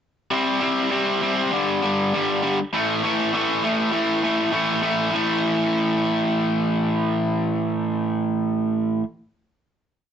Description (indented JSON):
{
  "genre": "punk",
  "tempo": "200 BPM",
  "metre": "4/4",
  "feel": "straight",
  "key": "A minor",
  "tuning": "A4 = 443 Hz",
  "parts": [
    { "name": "cranked stack guitar", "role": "solo", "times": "0.3-9.0 s", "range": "G2 to C4", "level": "-20 LUFS", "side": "equal", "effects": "overdrive" }
  ],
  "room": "moderate studio reverb, RT60 0.5 s",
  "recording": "rough rehearsal-room recording, nothing above 7.9 kHz",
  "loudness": "-20 LUFS",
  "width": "side -8 dB against mid",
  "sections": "0.3-5.1 verse; 5.1-7.5 final chord",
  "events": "none",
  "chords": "0.3 C5; 1.5 G5; 2.6 A5",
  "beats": "| 0.32 0.62 0.93 1.23 | 1.53 1.83 2.13 2.43 | 2.73 3.04 3.33 3.63 | 3.93 4.23 4.53 4.83 | 5.13 5.43 5.73 6.03 | 6.33 6.62 6.92 7.22"
}